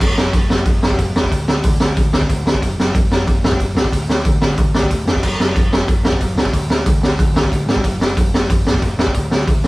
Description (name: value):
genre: punk rock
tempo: 184 BPM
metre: 4/4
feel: straight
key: unclear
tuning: A4 = 440 Hz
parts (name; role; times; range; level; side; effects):
- growling picked electric bass; bass; 0.0-9.7 s; E1 to G#2; -21 LUFS; equal; overdrive
- raw garage drum kit; drums; 0.0-9.7 s; crash cymbal, hi-hat, kick drum, snare drum; -14 LUFS; equal; none
room: light reverb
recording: band playing live in one room, vinyl crackle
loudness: -14 LUFS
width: side -21 dB against mid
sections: 0.0-9.7 A section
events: none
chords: none